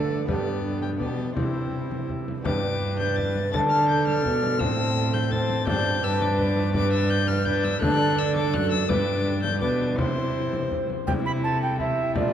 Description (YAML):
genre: classical, renaissance-style consort dance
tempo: 167 BPM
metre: 3/4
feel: straight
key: C major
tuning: A4 = 440 Hz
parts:
  - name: warm violin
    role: melody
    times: 0.0-12.3 s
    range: G4 to A6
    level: -31 LUFS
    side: left 6 dB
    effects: none
  - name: tenor recorder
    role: second line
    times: 0.0-12.3 s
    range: D4 to B5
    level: -28 LUFS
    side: right 3 dB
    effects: none
  - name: lute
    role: accompaniment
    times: 0.0-12.3 s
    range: F#2 to D5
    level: -31 LUFS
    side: left 2 dB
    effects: none
  - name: warm viola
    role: accompaniment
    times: 0.0-12.3 s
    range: A3 to F4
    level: -31 LUFS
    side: left 1 dB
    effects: none
  - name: dark cello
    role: bass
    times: 0.0-12.3 s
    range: F#2 to D3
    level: -27 LUFS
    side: right 1 dB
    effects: none
  - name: frame drum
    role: percussion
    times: 0.1-12.3 s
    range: none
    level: -31 LUFS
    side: left 2 dB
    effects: none
room: wet cathedral reverb, RT60 5.0 s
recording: dark, warm production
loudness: -22 LUFS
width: side -9 dB against mid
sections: 0.0-2.5 A section; 2.5-11.1 A section; 11.1-12.3 B section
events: none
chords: 0.3 G; 1.4 C; 2.5 G; 3.5 Dm; 4.6 Am; 5.7 Gsus4; 6.0 G; 7.8 D; 8.9 G; 10.0 C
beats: | 0.29 0.64 1.00 | 1.37 1.73 2.09 | 2.45 2.81 3.17 | 3.53 3.89 4.25 | 4.60 4.96 5.32 | 5.67 6.03 6.39 | 6.75 7.10 7.46 | 7.82 8.18 8.54 | 8.89 9.25 9.61 | 9.98 10.34 10.71 | 11.07 11.44 11.79 | 12.15